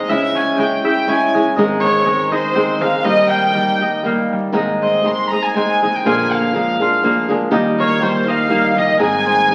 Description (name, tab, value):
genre	mexican folk, mariachi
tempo	122 BPM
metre	3/4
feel	swing 53% on 8ths, rubato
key	Ab major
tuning	A4 = 440 Hz
part	warm chamber violin section	melody	0.0-9.5 s	C5 to C6	-20 LUFS	equal	none
part	flamenco guitar	accompaniment	0.0-9.5 s	Ab2 to Ab4	-20 LUFS	equal	none
part	concert harp	arpeggios	0.0-9.5 s	G3 to Fb5	-23 LUFS	equal	none
part	upright bass	bass	0.1-9.5 s	Ab1 to Eb2	-36 LUFS	equal	none
room	wet large studio reverb, RT60 1.2 s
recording	very old 78 rpm record, vinyl crackle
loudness	-16 LUFS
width	mono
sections	0.0-9.5 A section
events	none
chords	0.1 Dbm; 1.6 Ab; 3.0 Eb; 4.6 Ab; 6.1 Bb7; 7.5 Eb; 9.0 Ab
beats	| 0.09 0.59 1.08 | 1.57 2.06 2.55 | 3.05 3.54 4.05 | 4.55 5.06 5.57 | 6.07 6.56 7.04 | 7.53 8.01 8.50 | 8.99 9.48